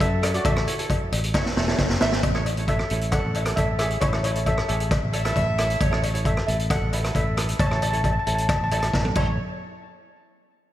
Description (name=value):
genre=calypso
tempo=134 BPM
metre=4/4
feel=straight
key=A major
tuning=A4 = 439 Hz
part: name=steel pan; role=melody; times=0.0-8.9 s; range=E4 to A5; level=-28 LUFS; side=left 1 dB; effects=slapback echo, ping-pong delay
part: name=ukulele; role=accompaniment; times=0.0-9.4 s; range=E4 to E5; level=-31 LUFS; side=right 3 dB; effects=slapback echo
part: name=fingered electric bass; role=bass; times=0.0-9.4 s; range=E1 to F#2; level=-26 LUFS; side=equal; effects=none
part: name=street-band drum kit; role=drums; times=0.0-9.3 s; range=crash cymbal, hi-hat, kick drum, rim click, snare drum, toms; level=-24 LUFS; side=equal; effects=none
part: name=cowbell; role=percussion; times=0.0-9.4 s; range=none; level=-32 LUFS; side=left 5 dB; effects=slapback echo
part: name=warm horn section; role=second line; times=5.1-6.1, 9.2-9.4 s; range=C#5 to E5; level=-30 LUFS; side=equal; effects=slapback echo
room=moderate lush hall reverb, RT60 2.0 s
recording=big arena sound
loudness=-20 LUFS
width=side -13 dB against mid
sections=0.0-2.2 A section; 2.2-9.4 B section; 9.4-10.7 C section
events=drum fill 1.3-2.2, 8.9-9.4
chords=0.5 A; 9.4 N.C.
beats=0.00 | 0.45 0.90 1.34 1.79 | 2.24 2.68 3.13 3.58 | 4.03 4.47 4.92 5.37 | 5.81 6.26 6.71 7.15 | 7.60 8.05 8.49 8.94